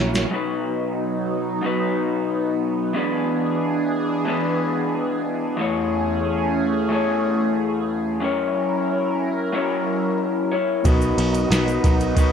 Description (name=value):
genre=indie pop, bedroom pop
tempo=91 BPM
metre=4/4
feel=straight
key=B major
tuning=A4 = 441 Hz
part: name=electric guitar through a small old amp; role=accompaniment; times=0.0-12.3 s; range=B2 to C#5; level=-22 LUFS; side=left 4 dB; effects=wide subtle chorus, vibrato effect
part: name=mellow tonewheel organ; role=accompaniment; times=0.0-0.3, 10.8-12.3 s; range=A#3 to D#5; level=-25 LUFS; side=right 7 dB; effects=fast rotary speaker
part: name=phased analog pad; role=sustained chords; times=0.0-12.3 s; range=E2 to A#4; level=-25 LUFS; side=right 4 dB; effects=phaser, chorus
part: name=picked electric bass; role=bass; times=0.0-0.2, 10.8-12.3 s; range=A#1 to B1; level=-23 LUFS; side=right 1 dB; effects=none
part: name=tube shaker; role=percussion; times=0.1-0.3, 10.8-12.3 s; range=none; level=-41 LUFS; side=right 12 dB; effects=none
part: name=soft vintage rhythm box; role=drums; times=0.2-0.3, 10.9-12.3 s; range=hi-hat, kick drum, ride cymbal, snare drum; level=-20 LUFS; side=equal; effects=overdrive
room=moderate studio reverb, RT60 0.5 s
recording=dark, warm production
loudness=-20 LUFS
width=side -7 dB against mid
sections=0.3-12.3 A section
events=drum fill 0.0-0.3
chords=0.3 B; 2.9 E7; 5.6 Amaj7/E; 8.2 F#7; 10.9 Bmaj7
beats=| 0.31 0.97 1.63 2.29 | 2.95 3.61 4.26 4.92 | 5.58 6.24 6.90 7.56 | 8.22 8.88 9.54 10.19 | 10.85 11.51 12.17